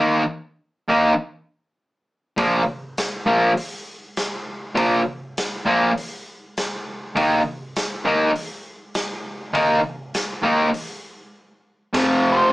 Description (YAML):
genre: garage rock duo or trio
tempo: 100 BPM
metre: 4/4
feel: straight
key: unclear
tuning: A4 = 439 Hz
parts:
  - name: fuzz guitar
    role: riff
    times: 0.0-12.5 s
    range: F2 to Eb4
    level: -17 LUFS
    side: equal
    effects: distortion
  - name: raw garage drum kit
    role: drums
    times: 2.4-12.1 s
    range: crash cymbal, hi-hat, kick drum, snare drum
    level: -28 LUFS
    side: equal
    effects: none
  - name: overdriven combo organ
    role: melody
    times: 12.3-12.5 s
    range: B4 to C5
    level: -16 LUFS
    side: right 1 dB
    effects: none
room: moderate studio ambience, RT60 0.5 s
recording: band playing live in one room, small speaker sound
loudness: -19 LUFS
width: side -18 dB against mid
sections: 0.0-11.9 A section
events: break 11.3-11.9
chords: 0.0 Eb5; 2.4 Bb5; 7.2 Eb5; 11.9 F5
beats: 0.58 1.18 1.78 | 2.37 2.97 3.57 4.17 | 4.76 5.36 5.96 6.56 | 7.16 7.75 8.35 8.95 | 9.55 10.15 10.75 11.35 | 11.94